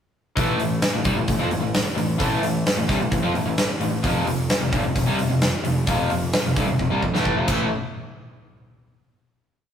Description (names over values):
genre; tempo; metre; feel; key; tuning
hard rock; 131 BPM; 4/4; straight; A minor; A4 = 440 Hz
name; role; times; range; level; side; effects
crunchy overdriven guitar; riff; 0.4-7.7 s; F2 to C4; -27 LUFS; right 5 dB; none
overdriven semi-hollow guitar; riff; 0.4-7.7 s; F2 to C4; -24 LUFS; left 3 dB; none
fuzz fingered electric bass; bass; 0.4-7.7 s; F1 to F2; -28 LUFS; equal; overdrive
big rock drum kit; drums; 0.4-7.6 s; crash cymbal, hi-hat, kick drum, snare drum; -24 LUFS; equal; none
room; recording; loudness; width
moderate stone room reverb, RT60 1.4 s; rough rehearsal-room recording; -19 LUFS; side -8 dB against mid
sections
0.4-7.7 riff; 7.7-9.5 final hit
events
drum fill 6.8-7.7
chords
0.4 Am; 4.0 F5; 7.5 A5; 7.7 N.C.